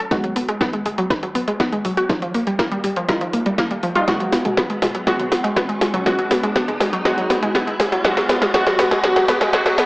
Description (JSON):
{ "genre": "melodic techno", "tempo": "121 BPM", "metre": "4/4", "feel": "straight", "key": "unclear", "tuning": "A4 = 443 Hz", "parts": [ { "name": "analog pluck", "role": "arpeggios", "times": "0.0-9.8 s", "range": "E#3 to B4", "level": "-21 LUFS", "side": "equal", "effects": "chorus, sidechain pumping, analog delay" }, { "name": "synth brass stab", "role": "stabs", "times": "0.0-9.9 s", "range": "G3 to F#4", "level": "-22 LUFS", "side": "equal", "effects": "chorus, sidechain pumping, analog delay" }, { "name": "tight sequencer bass", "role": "bass", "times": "0.0-9.9 s", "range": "D#1 to C#2", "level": "-42 LUFS", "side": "equal", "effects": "none" }, { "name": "riser", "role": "sound effects", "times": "1.8-9.9 s", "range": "none", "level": "-30 LUFS", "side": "equal", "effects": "none" }, { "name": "electronic kick drum", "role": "drums", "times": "0.1-9.6 s", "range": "none", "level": "-27 LUFS", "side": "equal", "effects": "none" }, { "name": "techno drum kit", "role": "drums", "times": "0.1-9.9 s", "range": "hi-hat, snare drum, toms", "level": "-20 LUFS", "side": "equal", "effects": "none" } ], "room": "wet digital room reverb, RT60 1.2 s", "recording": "dry, gritty hardware recording, high-pass filter, AM radio sound", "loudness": "-16 LUFS", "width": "side -23 dB against mid", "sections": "0.0-9.9 A section", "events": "build-up 0.0-9.9; drum fill 0.0-9.9; filter sweep on synth arpeggio sound 0.0-9.9; filter sweep on synth stab 0.0-9.9", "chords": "0.1 G#m7; 2.1 D#add9; 4.1 G#m7; 6.1 N.C.; 8.0 G#m7" }